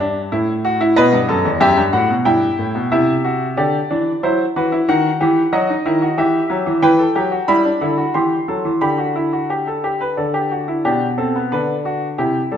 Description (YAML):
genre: classical, baroque-style 3-part fugue for grand piano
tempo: 92 BPM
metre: 3/4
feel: straight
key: G major from 6.8 s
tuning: A4 = 440 Hz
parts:
  - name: clear concert grand piano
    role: solo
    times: 0.0-12.6 s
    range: E2 to C6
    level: -15 LUFS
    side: equal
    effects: none
room: wet recital hall reverb, RT60 1.5 s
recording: none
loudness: -15 LUFS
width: side -8 dB against mid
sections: 0.0-2.9 A section; 2.9-10.9 B section; 10.9-12.6 A section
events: none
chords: 0.3 A5; 1.0 B7; 2.3 Em/G; 2.9 C; 4.2 Cmaj7#11; 4.9 D#m; 6.2 Em; 8.1 C/E; 8.8 G/D; 10.2 D; 10.9 G/B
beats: 0.32 | 0.96 1.60 2.25 | 2.91 3.57 4.23 | 4.88 5.53 6.18 | 6.83 7.48 8.14 | 8.81 9.49 10.17 | 10.85 11.52 12.19